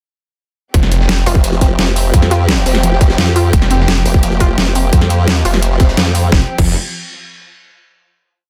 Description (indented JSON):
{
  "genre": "dark technical drum and bass",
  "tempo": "172 BPM",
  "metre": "4/4",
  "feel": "straight",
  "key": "unclear",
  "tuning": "A4 = 439 Hz",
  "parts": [
    { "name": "warm symphonic string section", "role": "sustained chords", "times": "0.7-6.5 s", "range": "F3 to G4", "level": "-25 LUFS", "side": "equal", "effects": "sidechain pumping" },
    { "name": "warbly dusty pluck", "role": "arpeggios", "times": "0.7-6.7 s", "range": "F3 to F4", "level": "-23 LUFS", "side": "equal", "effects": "chorus, sidechain pumping, dub echo" },
    { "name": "snarling distorted saw bass", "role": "bass", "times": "0.7-1.2, 3.5-4.0, 6.3-6.7 s", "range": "F1", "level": "-16 LUFS", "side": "equal", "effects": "distortion, tube saturation" },
    { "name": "crunchy breakbeat drum kit", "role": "drums", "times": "0.7-6.2 s", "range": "hi-hat, snare drum", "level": "-30 LUFS", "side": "equal", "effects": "none" },
    { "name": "dubstep drum kit", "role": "drums", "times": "0.7-6.7 s", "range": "crash cymbal, hi-hat, snare drum", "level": "-19 LUFS", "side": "equal", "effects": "overdrive, small room ambience" },
    { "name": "electronic kick drum", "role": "drums", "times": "0.7-6.7 s", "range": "none", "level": "-13 LUFS", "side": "equal", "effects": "small room ambience" },
    { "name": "formant-sweep wobble bass", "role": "bass", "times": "1.3-6.3 s", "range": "F1 to F2", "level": "-16 LUFS", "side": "equal", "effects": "chorus" }
  ],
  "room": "small room ambience",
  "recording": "dense, heavily limited modern master",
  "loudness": "-12 LUFS",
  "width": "mono",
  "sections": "0.7-6.3 drop; 6.3-7.7 final chord",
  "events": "drop 0.7-6.3; band accent 6.0",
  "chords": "0.7 F5"
}